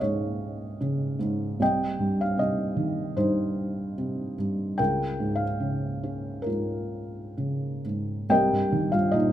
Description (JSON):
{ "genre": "classical, lyrical solo piano", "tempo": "62-79 BPM", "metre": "4/4", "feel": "rubato", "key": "Bb dorian", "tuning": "A4 = 440 Hz", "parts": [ { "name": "felt-muted upright piano", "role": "solo", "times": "0.0-9.3 s", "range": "C2 to G5", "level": "-24 LUFS", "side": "equal", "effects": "none" } ], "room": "moderate recital hall reverb, RT60 1.7 s", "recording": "minimal, uncompressed stereo recording", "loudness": "-25 LUFS", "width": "side -11 dB against mid", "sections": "0.0-8.3 A section; 8.3-9.3 A section", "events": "none", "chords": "0.0 Bbm7/Db; 1.6 Cm; 4.8 Bbm7/Db; 8.3 Cm7" }